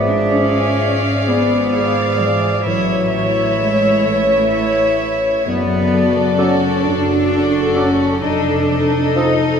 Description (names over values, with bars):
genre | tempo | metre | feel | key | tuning
classical, slow romantic movement for symphony orchestra | 43 BPM (dotted quarters) | 6/8 | rubato | A major | A4 = 439 Hz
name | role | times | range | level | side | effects
dark clarinet | second line | 0.0-9.3 s | G#4 to A4 | -29 LUFS | equal | none
mellow cor anglais | second line | 0.0-9.3 s | C#5 to Eb5 | -26 LUFS | right 3 dB | none
mellow flute section | second line | 0.0-9.6 s | A4 to E5 | -23 LUFS | left 3 dB | none
dark bassoon | accompaniment | 0.0-9.3 s | E3 to F#3 | -25 LUFS | right 2 dB | none
mellow French horn section | sustained chords | 0.0-9.6 s | Eb4 to D5 | -22 LUFS | left 3 dB | none
concert harp | arpeggios | 0.0-9.6 s | F2 to D5 | -26 LUFS | left 5 dB | none
rich studio double bass section | bass | 0.0-9.5 s | F1 to A1 | -23 LUFS | right 2 dB | none
warm studio cello section | bass | 0.0-9.6 s | E3 to Eb4 | -19 LUFS | right 1 dB | none
warm chamber violin section | melody | 0.3-9.6 s | D5 to E#5 | -25 LUFS | left 2 dB | none
clear chamber violin section | second line | 0.3-9.6 s | A4 to D5 | -26 LUFS | left 1 dB | none
warm studio viola section | accompaniment | 0.3-9.6 s | Eb4 to G#4 | -27 LUFS | right 2 dB | none
room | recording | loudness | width
wet recital hall reverb, RT60 1.8 s | heard from further back in the room | -13 LUFS | side -7 dB against mid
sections
0.0-9.6 A section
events
none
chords
0.0 G#dim7; 2.7 A; 5.5 D/F#; 8.2 F7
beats
1.26 | 2.65 4.04 | 5.46 6.84 | 8.22